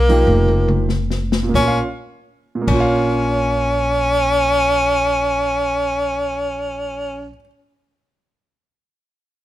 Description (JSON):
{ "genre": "modal jazz", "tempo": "88 BPM", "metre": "4/4", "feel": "swing 67% on 8ths", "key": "Bb dorian", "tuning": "A4 = 444 Hz", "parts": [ { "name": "edgy tenor saxophone", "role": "melody", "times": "0.0-7.3 s", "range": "Bb3 to Db4", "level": "-18 LUFS", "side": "equal", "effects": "none" }, { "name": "upright bass", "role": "bass", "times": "0.0-7.3 s", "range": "F1 to Cb2", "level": "-21 LUFS", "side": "equal", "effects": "none" }, { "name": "warm grand piano", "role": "accompaniment", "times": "0.1-7.5 s", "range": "Bb2 to F5", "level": "-22 LUFS", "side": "right 2 dB", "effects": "none" }, { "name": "open jazz drum kit", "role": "drums", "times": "0.1-2.8 s", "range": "crash cymbal, hi-hat, kick drum, snare drum, toms", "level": "-23 LUFS", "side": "left 3 dB", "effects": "none" } ], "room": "light reverb", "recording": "close, detailed microphones", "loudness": "-15 LUFS", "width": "side -14 dB against mid", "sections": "0.0-1.5 A section; 1.5-7.0 B section", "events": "slowing down 0.0-1.5; drum fill 0.3-1.5", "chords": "0.0 Bbsus4; 1.5 Bbm", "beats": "0.27 0.88 | 1.53 2.22 2.90 3.58 | 4.26 4.94 5.62 6.30" }